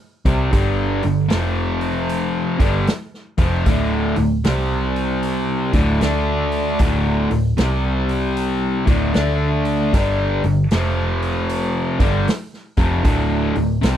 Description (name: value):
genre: blues rock power trio and southern rock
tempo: 77 BPM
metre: 4/4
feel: swing 65% on 8ths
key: unclear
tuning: A4 = 437 Hz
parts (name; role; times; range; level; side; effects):
- distorted electric guitar; riff; 0.3-14.0 s; D2 to D4; -19 LUFS; equal; distortion
- vintage muted picked electric bass; bass; 0.3-14.0 s; D1 to D2; -22 LUFS; equal; none
- vintage drum kit; drums; 0.3-14.0 s; hi-hat, kick drum, snare drum; -20 LUFS; equal; none
room: little or no reverb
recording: none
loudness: -17 LUFS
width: side -10 dB against mid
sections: 0.0-14.0 A section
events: none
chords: 0.0 N.C.; 0.5 G5; 1.3 F5; 2.5 G5; 3.7 D5; 4.5 C5; 5.6 D5; 7.6 C5; 8.8 D5; 9.9 G5; 10.7 F5; 11.9 G5; 13.1 D5